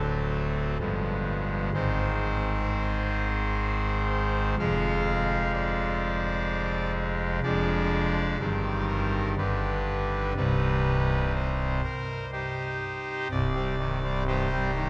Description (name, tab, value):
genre	classical, chorale-style piece for pipe organ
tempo	63 BPM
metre	3/4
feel	straight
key	C minor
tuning	A4 = 437 Hz
part	pipe organ, trumpet	solo	0.0-14.9 s	C1 to F5	-28 LUFS	equal	none
room	wet cathedral reverb, RT60 4.6 s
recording	dark, warm production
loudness	-28 LUFS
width	mono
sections	0.0-13.3 A section; 13.3-14.9 B section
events	none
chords	0.0 D7; 0.8 G7b9; 1.7 Ab; 4.6 Fm; 7.4 Ddim/F; 8.4 Cm/G; 9.4 G; 10.4 Cm